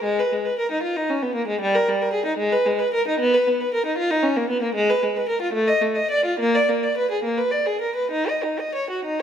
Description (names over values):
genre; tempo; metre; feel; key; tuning
classical, baroque-style suite movement for unaccompanied violin; 63-79 BPM (dotted quarters); 6/8; rubato; Eb minor from 3.2 s; A4 = 440 Hz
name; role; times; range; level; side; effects
rich violin; solo; 0.0-9.2 s; G3 to Eb5; -19 LUFS; equal; none
room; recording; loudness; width
moderate recital hall reverb, RT60 1.7 s; none; -19 LUFS; side -8 dB against mid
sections
0.0-9.2 A section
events
none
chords
none